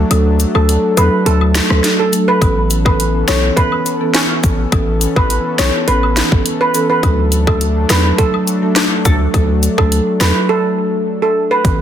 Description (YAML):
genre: dancehall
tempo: 104 BPM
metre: 4/4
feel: straight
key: unclear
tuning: A4 = 440 Hz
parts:
  - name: warm analog pad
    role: sustained chords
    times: 0.0-11.8 s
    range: E3 to A4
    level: -23 LUFS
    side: left 4 dB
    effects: chorus, sidechain pumping
  - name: hard-hitting 808-style bass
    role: bass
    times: 0.0-11.8 s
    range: A1 to E2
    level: -15 LUFS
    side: equal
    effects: none
  - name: marimba with soft mallets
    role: accompaniment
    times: 0.1-11.8 s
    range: E3 to A4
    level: -18 LUFS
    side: right 2 dB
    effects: none
  - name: island pop drum kit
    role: drums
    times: 0.1-11.8 s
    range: hi-hat, kick drum, rim click, snare drum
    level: -16 LUFS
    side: equal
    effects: none
  - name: woodblock and cabasa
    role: percussion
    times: 0.1-10.3 s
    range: none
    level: -24 LUFS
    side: left 11 dB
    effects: none
  - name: steel pan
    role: melody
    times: 0.6-11.6 s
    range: A4 to C#5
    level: -17 LUFS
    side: right 2 dB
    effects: tape echo
  - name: glassy wavetable pluck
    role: second line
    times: 4.1-5.0, 8.8-9.6 s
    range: C#4 to A4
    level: -22 LUFS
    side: left 4 dB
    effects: chorus, tape echo
room: light reverb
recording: dense, heavily limited modern master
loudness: -11 LUFS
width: side -10 dB against mid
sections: 0.0-11.6 A section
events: break 0.0-2.4; silent gap 10.5-11.6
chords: 0.0 D; 2.4 Aadd9; 7.0 D